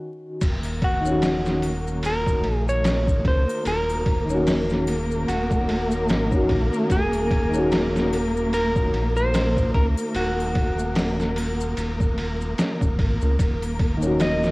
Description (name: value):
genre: trip hop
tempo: 74 BPM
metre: 4/4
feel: swing 57% on 16ths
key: Eb minor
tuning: A4 = 440 Hz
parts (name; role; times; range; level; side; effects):
- felt-muted upright piano; accompaniment; 0.0-14.5 s; Eb3 to Gb4; -26 LUFS; left 1 dB; tremolo, cassette tape, tape echo
- dark chamber string section; sustained chords; 0.4-14.5 s; Bb3 to Bb4; -27 LUFS; equal; cassette tape
- round analog bass; bass; 0.4-14.5 s; Eb1 to Db2; -26 LUFS; equal; none
- trip hop sampler-style drum kit; drums; 0.4-14.5 s; crash cymbal, hi-hat, kick drum, ride cymbal, snare drum; -25 LUFS; equal; overdrive, cassette tape
- maracas and triangle; percussion; 0.4-14.5 s; none; -44 LUFS; left 8 dB; none
- clean electric guitar; melody; 0.8-14.5 s; Gb4 to Eb5; -27 LUFS; equal; dub echo
room: little or no reverb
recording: home recording on cassette, vinyl crackle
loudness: -20 LUFS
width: side -23 dB against mid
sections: 0.4-14.5 A section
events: break 0.0-0.4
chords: 0.4 Ebm7